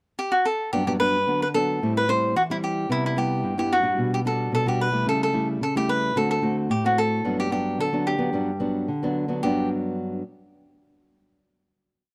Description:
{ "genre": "samba", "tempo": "110 BPM", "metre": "4/4", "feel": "straight", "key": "G major", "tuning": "A4 = 439 Hz", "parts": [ { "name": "cavaquinho", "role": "melody", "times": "0.2-9.7 s", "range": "E4 to C5", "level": "-26 LUFS", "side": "equal", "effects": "none" }, { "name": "nylon-string guitar", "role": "accompaniment", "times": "0.7-10.2 s", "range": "G2 to F#4", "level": "-27 LUFS", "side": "equal", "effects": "none" } ], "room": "small room ambience", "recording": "dry, close 1970s-style studio recording", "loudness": "-24 LUFS", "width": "mono", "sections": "0.0-0.7 pickup bar; 0.7-9.4 A section; 9.4-11.6 final chord", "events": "none", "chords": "0.0 N.C.; 0.7 Gmaj7; 1.8 Am7; 2.9 Cmaj7; 4.0 Gmaj7/B; 5.1 A7/C#; 6.2 D7; 7.2 Gmaj7" }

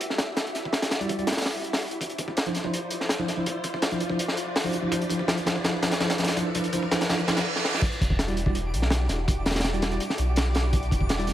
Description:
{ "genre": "drum and bass, jungle", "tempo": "165 BPM", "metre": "4/4", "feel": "straight", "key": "E phrygian", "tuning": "A4 = 440 Hz", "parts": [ { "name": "soft string machine", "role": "sustained chords", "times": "0.0-11.3 s", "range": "D4 to E5", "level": "-33 LUFS", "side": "equal", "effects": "ensemble chorus" }, { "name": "crunchy breakbeat drum kit", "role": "drums", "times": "0.0-11.3 s", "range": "crash cymbal, hi-hat, kick drum, snare drum", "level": "-26 LUFS", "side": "equal", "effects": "high-pass filter on kick, high-pass filter on hats, high-pass filter on cymbals, high-pass filter on snare, high-pass filter on room" }, { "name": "riser and reverse cymbal", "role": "sound effects", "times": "0.0-7.8 s", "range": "none", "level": "-36 LUFS", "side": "right 1 dB", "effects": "none" }, { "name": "bell-like tine electric piano", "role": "stabs", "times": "1.0-11.3 s", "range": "F3 to D5", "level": "-30 LUFS", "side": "equal", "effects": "fast stereo tremolo, low-pass filter, dub echo" }, { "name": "twinkling granular texture", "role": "texture", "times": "8.5-11.3 s", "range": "D5 to D6", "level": "-39 LUFS", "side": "right 1 dB", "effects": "built-in reverb" }, { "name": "saturated sub bass", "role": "bass", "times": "8.0-11.3 s", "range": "E1 to B1", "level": "-27 LUFS", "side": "equal", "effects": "none" } ], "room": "moderate echo chamber reverb, RT60 2.0 s, studio reverb", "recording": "vinyl crackle", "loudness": "-23 LUFS", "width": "side -12 dB against mid", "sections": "0.0-7.8 A section; 7.8-11.3 B section", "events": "build-up 0.0-7.8; filter sweep on tine electric piano 0.0-7.8; reverse cymbal 7.1-7.8; drum fill 7.6; drop 7.8-11.3", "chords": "0.0 Em9; 2.0 Dm9; 7.8 Em9" }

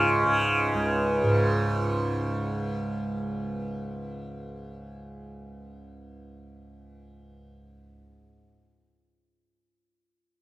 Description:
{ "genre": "indian classical", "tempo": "150 BPM", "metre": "3/4", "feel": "straight", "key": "unclear", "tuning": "A4 = 440 Hz", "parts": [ { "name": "santur", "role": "melody", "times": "0.0-3.1 s", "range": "Db4 to F4", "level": "-27 LUFS", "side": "equal", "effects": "none" }, { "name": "tanpura", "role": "drone", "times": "0.0-8.4 s", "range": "Db2 to Db3", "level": "-27 LUFS", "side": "right 1 dB", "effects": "none" } ], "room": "moderate plate reverb, RT60 3.2 s", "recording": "rough home demo mix", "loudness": "-24 LUFS", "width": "side -16 dB against mid", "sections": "0.0-1.7 A section", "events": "none", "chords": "none" }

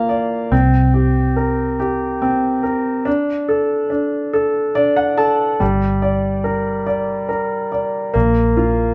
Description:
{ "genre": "six-eight pop ballad", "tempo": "47 BPM (dotted quarters)", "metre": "6/8", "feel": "straight", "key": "G minor", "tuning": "A4 = 436 Hz", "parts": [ { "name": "warm baby grand piano", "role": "accompaniment", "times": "0.0-8.9 s", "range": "G3 to A5", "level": "-19 LUFS", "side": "equal", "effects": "none" }, { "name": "vintage muted fingered electric bass", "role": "bass", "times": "0.0-8.9 s", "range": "G1 to D2", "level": "-21 LUFS", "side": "equal", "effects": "none" } ], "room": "wet small room reverb, RT60 0.6 s", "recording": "band playing live in one room", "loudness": "-18 LUFS", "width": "mono", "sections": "0.0-5.6 A section; 5.6-8.9 B section", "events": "grand piano fill 0.0-0.5, 4.3-5.6", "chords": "0.0 Bb; 0.5 C5; 3.1 D5; 5.6 Gm; 8.1 Bb5" }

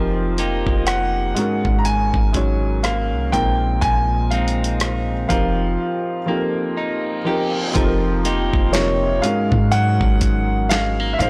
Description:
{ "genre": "contemporary R&B", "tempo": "61 BPM", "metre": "4/4", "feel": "swing 58% on 16ths", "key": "F minor", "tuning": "A4 = 440 Hz", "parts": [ { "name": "felt-muted upright piano", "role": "accompaniment", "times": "0.0-11.3 s", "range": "Ab2 to Db5", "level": "-26 LUFS", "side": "equal", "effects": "none" }, { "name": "clean electric guitar", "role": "arpeggios", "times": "0.0-11.3 s", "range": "Ab2 to G4", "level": "-27 LUFS", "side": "equal", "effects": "none" }, { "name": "soft 808-style bass", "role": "bass", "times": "0.0-11.3 s", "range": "F1 to Ab2", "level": "-24 LUFS", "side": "equal", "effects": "none" }, { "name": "dusty soul sampler-style drum kit", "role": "drums", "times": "0.4-11.3 s", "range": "hi-hat, kick drum, rim click, snare drum", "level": "-24 LUFS", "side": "equal", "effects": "soft clipping on snare" }, { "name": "clear concert grand piano", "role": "melody", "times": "0.9-11.3 s", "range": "Db5 to Bb5", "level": "-25 LUFS", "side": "equal", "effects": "tape echo" }, { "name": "reverse cymbal", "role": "sound effects", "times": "6.9-7.8 s", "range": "none", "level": "-33 LUFS", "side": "equal", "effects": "none" } ], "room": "little or no reverb", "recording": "blown-out, overdriven recording, overdrive", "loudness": "-19 LUFS", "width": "mono", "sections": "0.0-7.8 A section; 7.8-11.3 B section", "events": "break 5.8-7.8; reverse cymbal 6.9-7.8", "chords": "0.0 F9sus4; 1.4 Ab9sus4; 3.3 Bb9sus4; 5.3 F9sus4; 9.2 Ab9sus4" }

